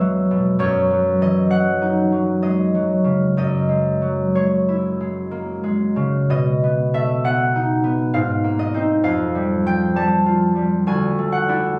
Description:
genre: classical, solo harp piece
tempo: 61-67 BPM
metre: 3/4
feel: rubato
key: unclear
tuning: A4 = 441 Hz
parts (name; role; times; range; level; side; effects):
- concert harp; solo; 0.0-11.8 s; D2 to A5; -19 LUFS; equal; none
room: light reverb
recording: recorded on a phone in the room, club reverb, compression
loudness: -19 LUFS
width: mono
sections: 0.0-11.8 A section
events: none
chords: 0.0 E69; 0.6 F#5; 3.4 F#9; 6.3 Badd9; 8.1 G#add9; 9.1 Fadd9; 10.9 Dadd9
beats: | 0.60 1.51 2.42 | 3.37 4.34 5.32 | 6.30 7.24 8.14 | 9.05 9.96 10.86 | 11.77

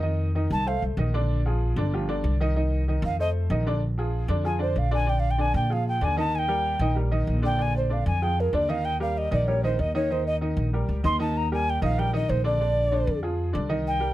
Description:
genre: Afro-Cuban jazz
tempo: 191 BPM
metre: 4/4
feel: straight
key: Bb mixolydian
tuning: A4 = 441 Hz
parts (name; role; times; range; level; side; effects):
- warm upright piano; accompaniment; 0.0-14.1 s; D3 to Eb5; -29 LUFS; equal; none
- upright bass; bass; 0.0-14.1 s; G1 to Bb2; -25 LUFS; equal; none
- alto ocarina; melody; 0.5-0.8, 3.1-14.1 s; Bb4 to C6; -26 LUFS; equal; none
room: little or no reverb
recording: close, detailed microphones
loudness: -22 LUFS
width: side -15 dB against mid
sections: 0.0-3.8 A section; 3.8-14.1 A section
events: ocarina solo 0.0-14.1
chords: 0.0 F7; 1.3 Bb7; 1.9 G5; 2.6 Cm; 3.2 F7; 3.8 Bb7; 6.3 Eb; 7.6 Bb7; 8.8 Eb; 12.6 Bb9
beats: | 0.04 0.35 0.67 0.98 | 1.30 1.61 1.93 2.24 | 2.56 2.87 3.19 3.50 | 3.82 4.13 4.45 4.76 | 5.08 5.39 5.71 6.02 | 6.33 6.65 6.96 7.28 | 7.59 7.90 8.22 8.53 | 8.85 9.16 9.47 9.79 | 10.10 10.41 10.73 11.04 | 11.36 11.67 11.98 12.29 | 12.61 12.92 13.24 13.55 | 13.86

